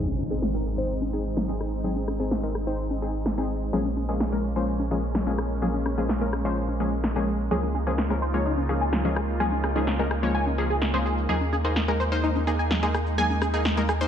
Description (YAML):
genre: progressive house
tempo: 127 BPM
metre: 4/4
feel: straight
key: Ab major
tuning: A4 = 440 Hz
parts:
  - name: supersaw pad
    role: sustained chords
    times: 0.0-14.1 s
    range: Db3 to F4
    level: -32 LUFS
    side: right 2 dB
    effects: none
  - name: wide unison pluck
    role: stabs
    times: 0.0-14.1 s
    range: F3 to Db5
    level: -29 LUFS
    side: left 3 dB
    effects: cassette tape, digital delay
  - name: saturated sub bass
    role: bass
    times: 0.0-14.1 s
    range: Ab1 to Eb2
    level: -28 LUFS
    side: equal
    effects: none
  - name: impact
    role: sound effects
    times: 0.0-1.8 s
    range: none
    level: -33 LUFS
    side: right 1 dB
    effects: none
  - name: electronic shaker and snare drum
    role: drums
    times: 0.1-14.1 s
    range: none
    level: -30 LUFS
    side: equal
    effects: overdrive, low-pass filter on hats, low-pass filter on snare, low-pass filter on toms, low-pass filter on perc, low-pass filter on room
  - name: electronic congas and rim click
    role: percussion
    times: 0.1-14.0 s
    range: none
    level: -33 LUFS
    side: left 2 dB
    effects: none
  - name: tight sequenced synth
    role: arpeggios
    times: 7.5-13.9 s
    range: Ab3 to Ab5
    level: -29 LUFS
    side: equal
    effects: chorus, digital delay
room: moderate recital hall reverb, RT60 1.5 s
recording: low-pass filter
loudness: -23 LUFS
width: side -8 dB against mid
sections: 0.0-14.1 A section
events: impact 0.0-1.8; filter sweep 0.0-14.1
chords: 0.0 Ab; 3.7 Bbm7; 7.5 Db6; 11.3 Ebsus4